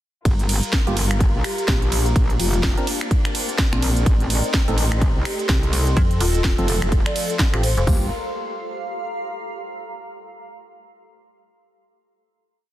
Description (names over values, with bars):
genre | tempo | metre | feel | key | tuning
bass house | 126 BPM | 4/4 | swing 59% on 16ths | G minor | A4 = 440 Hz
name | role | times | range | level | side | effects
muted studio string section | sustained chords | 0.3-8.1 s | F3 to Bb4 | -32 LUFS | left 3 dB | sidechain pumping, low-pass filter
metallic wobble bass | bass | 0.3-8.1 s | F1 to C2 | -21 LUFS | equal | chorus, sidechain pumping
house drum kit | drums | 0.3-8.0 s | hi-hat, kick drum, toms | -20 LUFS | equal | studio reverb
house drum kit | drums | 0.3-7.9 s | finger snaps, hi-hat, ride cymbal, snare drum | -25 LUFS | right 1 dB | studio reverb
granular cloud pad | texture | 0.7-9.7 s | G4 to C6 | -31 LUFS | equal | built-in reverb, sidechain pumping
percussive organ stab | stabs | 0.9-8.1 s | Bb3 to Bb4 | -31 LUFS | right 2 dB | chorus, sidechain pumping, digital delay
marimba with medium mallets | melody | 1.4-7.8 s | C4 to D5 | -29 LUFS | left 1 dB | digital delay
metallic FM bass | bass | 6.0-7.9 s | Eb1 to F2 | -20 LUFS | equal | sidechain pumping
room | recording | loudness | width
digital ambience | dense, heavily limited modern master | -18 LUFS | side -14 dB against mid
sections
0.3-7.9 drop; 7.9-9.8 final chord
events
drop 0.3-7.9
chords
0.3 Gm7; 2.2 Bbadd9; 4.1 Adim; 6.0 F; 7.9 Gm7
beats
| 0.25 0.73 1.21 1.68 | 2.16 2.63 3.11 3.59 | 4.06 4.54 5.01 5.49 | 5.97 6.44 6.92 7.40 | 7.87 8.35 8.82 9.30